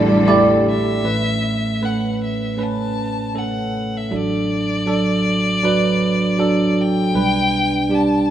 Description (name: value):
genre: pop ballad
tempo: 78 BPM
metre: 4/4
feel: straight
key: unclear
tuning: A4 = 440 Hz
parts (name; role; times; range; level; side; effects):
- warm symphonic cello section; second line; 0.0-1.0 s; E2 to G3; -21 LUFS; left 2 dB; digital delay
- bell-like tine electric piano; accompaniment; 0.0-8.3 s; A1 to D5; -17 LUFS; right 2 dB; lush chorus
- rich studio string section; sustained chords; 0.0-1.0 s; G3 to A4; -23 LUFS; left 1 dB; none
- warm violin; melody; 0.7-8.3 s; D5 to A5; -23 LUFS; left 3 dB; none
room: light reverb, small room ambience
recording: rough home demo mix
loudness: -16 LUFS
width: side -10 dB against mid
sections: 0.0-1.0 A section; 1.0-8.3 B section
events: none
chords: 0.0 A7sus4; 1.0 Aadd9; 4.1 D/A; 7.2 G/B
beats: 0.27 | 1.04 1.81 2.58 3.35 | 4.11 4.88 5.64 6.40 | 7.15 7.91